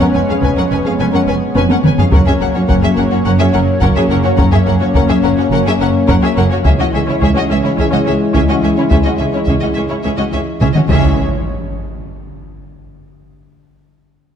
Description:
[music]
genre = cinematic, hybrid orchestral and electronic film score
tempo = 106 BPM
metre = 4/4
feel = straight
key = C# dorian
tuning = A4 = 440 Hz
[part]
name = rich symphonic violin section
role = melody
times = 0.0-11.2 s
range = C#5 to G#5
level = -23 LUFS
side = left 4 dB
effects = none
[part]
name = warm studio violin section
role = second line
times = 0.0-11.2 s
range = E4 to B4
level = -22 LUFS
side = left 4 dB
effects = none
[part]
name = warm studio viola section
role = accompaniment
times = 0.0-11.2 s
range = C#4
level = -23 LUFS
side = right 1 dB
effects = none
[part]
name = chorused pulse-width pad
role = sustained chords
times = 0.0-11.2 s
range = E3 to C#5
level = -18 LUFS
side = left 2 dB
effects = none
[part]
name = mellow French horn section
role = sustained chords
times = 0.0-11.1 s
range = G#3 to E4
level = -20 LUFS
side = left 2 dB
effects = none
[part]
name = rich symphonic cello section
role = bass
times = 0.0-11.2 s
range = C#2 to F#2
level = -19 LUFS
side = right 3 dB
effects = none
[part]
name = rich symphonic double bass section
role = bass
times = 0.1-11.2 s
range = E#1 to C#2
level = -18 LUFS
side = right 3 dB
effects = none
[part]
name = taiko ensemble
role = drums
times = 0.4-12.0 s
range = none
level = -16 LUFS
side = equal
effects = none
[part]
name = impact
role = sound effects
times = 10.9-13.2 s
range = none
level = -22 LUFS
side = equal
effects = none
[sound]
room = moderate scoring stage reverb, RT60 1.4 s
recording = dark, warm production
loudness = -11 LUFS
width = side -8 dB against mid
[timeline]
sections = 0.0-11.2 A section; 11.2-13.4 B section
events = drum fill 1.6-2.1, 10.6-11.2; impact 11.2-13.4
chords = 0.0 C#7/E#; 2.1 F#; 6.6 C#m; 11.2 N.C.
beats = 0.42 0.99 1.55 | 2.12 2.69 3.25 3.82 | 4.38 4.95 5.51 6.08 | 6.65 7.21 7.78 8.35 | 8.91 9.48 10.04 10.61 | 11.18 11.74 12.31 12.87

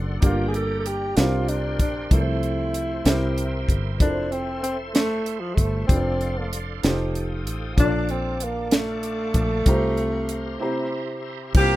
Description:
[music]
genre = slow gospel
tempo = 64 BPM (dotted quarters)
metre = 6/8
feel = straight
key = F major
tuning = A4 = 442 Hz
[part]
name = warm concert grand piano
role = accompaniment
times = 0.0-11.8 s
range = G2 to Bb5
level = -29 LUFS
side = right 1 dB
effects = none
[part]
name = bright tonewheel organ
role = sustained chords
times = 0.0-11.5 s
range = G4 to Eb6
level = -36 LUFS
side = right 1 dB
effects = slow rotary speaker, chorus vibrato
[part]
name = fingered electric bass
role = bass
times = 0.0-11.8 s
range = F1 to C2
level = -26 LUFS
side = equal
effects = none
[part]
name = tight funk drum kit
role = drums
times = 0.2-11.7 s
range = crash cymbal, hi-hat, kick drum, snare drum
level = -20 LUFS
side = equal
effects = none
[part]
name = mellow alto saxophone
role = melody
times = 0.3-10.9 s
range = F3 to A4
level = -26 LUFS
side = equal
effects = slapback echo
[part]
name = warm horn section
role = melody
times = 11.6-11.8 s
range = Bb3 to G4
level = -18 LUFS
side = left 1 dB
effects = none
[sound]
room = light reverb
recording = rough home demo mix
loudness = -21 LUFS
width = side -16 dB against mid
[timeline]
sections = 0.0-11.6 A section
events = break 10.6-11.6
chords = 0.2 Gm7; 1.2 C9sus4; 2.1 F/C; 3.1 C7; 4.0 Fmaj7; 5.9 Dm7/F; 6.8 F9; 7.8 Bbmaj7; 9.7 C7sus4; 10.6 C7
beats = | 0.23 1.17 | 2.12 3.06 | 4.00 4.95 | 5.89 6.83 | 7.78 8.72 | 9.67 10.61 | 11.55

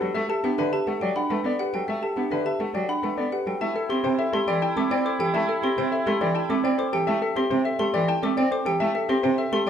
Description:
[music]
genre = classical, minimalist pattern music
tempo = 104 BPM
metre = 3/4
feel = straight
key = E minor, C major from 3.6 s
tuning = A4 = 444 Hz
[part]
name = clear concert grand piano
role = melody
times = 0.0-9.7 s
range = G4 to G5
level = -27 LUFS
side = left 6 dB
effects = none
[part]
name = warm cello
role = accompaniment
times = 0.0-9.7 s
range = C3 to C4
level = -28 LUFS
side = right 1 dB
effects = none
[part]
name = folk marimba with soft mallets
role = arpeggios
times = 0.0-9.7 s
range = C4 to C5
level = -27 LUFS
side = right 4 dB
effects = none
[part]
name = xylophone with rubber mallets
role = arpeggios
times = 0.0-9.7 s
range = E5 to D6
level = -30 LUFS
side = left 1 dB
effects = none
[part]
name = warm oboe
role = second line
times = 3.6-6.9 s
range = E4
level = -31 LUFS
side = right 2 dB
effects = none
[sound]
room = moderate large studio reverb, RT60 0.9 s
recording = dark, warm production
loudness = -22 LUFS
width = side -8 dB against mid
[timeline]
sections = 0.0-3.6 A section; 3.6-9.7 B section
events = none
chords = 0.0 Em11; 3.6 C6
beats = | 0.15 0.73 1.30 | 1.88 2.46 3.04 | 3.61 4.19 4.77 | 5.34 5.92 6.50 | 7.07 7.65 8.23 | 8.80 9.38

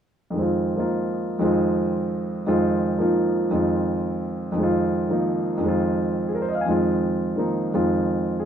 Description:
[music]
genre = jazz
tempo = 228 BPM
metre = 4/4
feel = swing 59% on 8ths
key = F minor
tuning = A4 = 440 Hz
[part]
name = warm grand piano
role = accompaniment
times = 0.3-8.5 s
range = F2 to Ab5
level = -20 LUFS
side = equal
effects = none
[sound]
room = moderate studio reverb, RT60 0.6 s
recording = none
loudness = -20 LUFS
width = side -8 dB against mid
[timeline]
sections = 0.4-8.5 A section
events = none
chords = 0.4 Fm7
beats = | 0.35 0.62 0.88 1.14 | 1.41 1.67 1.93 2.20 | 2.46 2.73 2.99 3.25 | 3.52 3.78 4.04 4.31 | 4.57 4.84 5.10 5.36 | 5.63 5.89 6.16 6.42 | 6.68 6.95 7.21 7.47 | 7.73 8.00 8.26

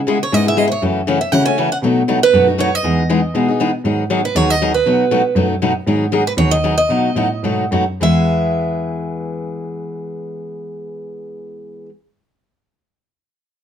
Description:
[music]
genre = acoustic string swing (jazz manouche)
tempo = 202-238 BPM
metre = 4/4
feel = swing 56% on 8ths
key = E major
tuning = A4 = 441 Hz
[part]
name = dark cello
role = bass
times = 0.0-11.1 s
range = D#2 to C#3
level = -19 LUFS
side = equal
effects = none
[part]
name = picked steel-string acoustic guitar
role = accompaniment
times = 0.1-11.9 s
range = B2 to G#4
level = -18 LUFS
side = left 2 dB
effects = none
[part]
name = picked steel-string acoustic guitar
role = melody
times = 0.2-11.9 s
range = B4 to G#5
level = -17 LUFS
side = right 4 dB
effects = none
[sound]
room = moderate studio reverb, RT60 0.5 s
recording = none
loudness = -14 LUFS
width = side -9 dB against mid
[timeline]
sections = 0.0-3.8 A section; 3.8-8.0 B section; 8.0-10.4 C section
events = slowing down 5.9-8.0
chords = 0.0 C#m7; 0.8 F#m7; 1.8 B7; 2.8 Emaj7; 3.8 G#m7; 4.9 B7; 5.9 G#m7; 6.9 B7; 8.0 E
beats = 0.07 0.32 0.57 | 0.82 1.07 1.33 1.58 | 1.83 2.08 2.33 2.59 | 2.84 3.09 3.34 3.59 | 3.85 4.10 4.35 4.60 | 4.85 5.11 5.36 5.61 | 5.86 6.12 6.37 6.63 | 6.89 7.16 7.43 7.72 | 8.01 8.31 8.60 8.90 | 9.20 9.49 9.79 10.09

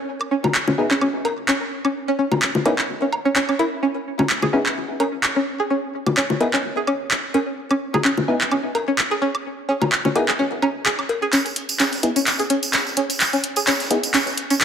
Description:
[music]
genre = minimal techno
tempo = 128 BPM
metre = 4/4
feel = swing 55% on 16ths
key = C# minor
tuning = A4 = 440 Hz
[part]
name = woodblock, bongos and cowbell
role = percussion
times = 0.2-11.2 s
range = none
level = -24 LUFS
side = left 2 dB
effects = overdrive, digital delay
[part]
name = string-like resonator pluck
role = riff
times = 0.3-14.5 s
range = C#4 to G#4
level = -22 LUFS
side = right 1 dB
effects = chorus, phaser, cassette tape, tape echo
[part]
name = house drum kit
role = drums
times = 0.5-14.6 s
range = handclaps, hi-hat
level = -22 LUFS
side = equal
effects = none
[part]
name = wavetable chord stab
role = stabs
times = 0.8-14.0 s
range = B3 to G#4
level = -25 LUFS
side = left 1 dB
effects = digital delay
[part]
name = breakbeat sampler-style drum kit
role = drums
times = 11.3-14.6 s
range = hi-hat, snare drum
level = -31 LUFS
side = equal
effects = high-pass filter on snare, high-pass filter on hats, high-pass filter on room
[part]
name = tambourine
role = percussion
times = 11.3-14.6 s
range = none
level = -27 LUFS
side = right 4 dB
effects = none
[sound]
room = moderate lush hall reverb, RT60 1.8 s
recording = none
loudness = -18 LUFS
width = side -8 dB against mid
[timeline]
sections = 0.0-11.3 A section; 11.3-14.6 B section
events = filter sweep on synth pluck 0.0-11.3; build-up 11.3-14.6; drum fill 11.3-14.6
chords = 0.0 C#m7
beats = | 0.08 0.55 1.01 1.48 | 1.95 2.42 2.89 3.36 | 3.83 4.30 4.76 5.23 | 5.70 6.17 6.64 7.11 | 7.58 8.05 8.52 8.98 | 9.45 9.92 10.39 10.86 | 11.33 11.80 12.27 12.73 | 13.20 13.67 14.14 14.61

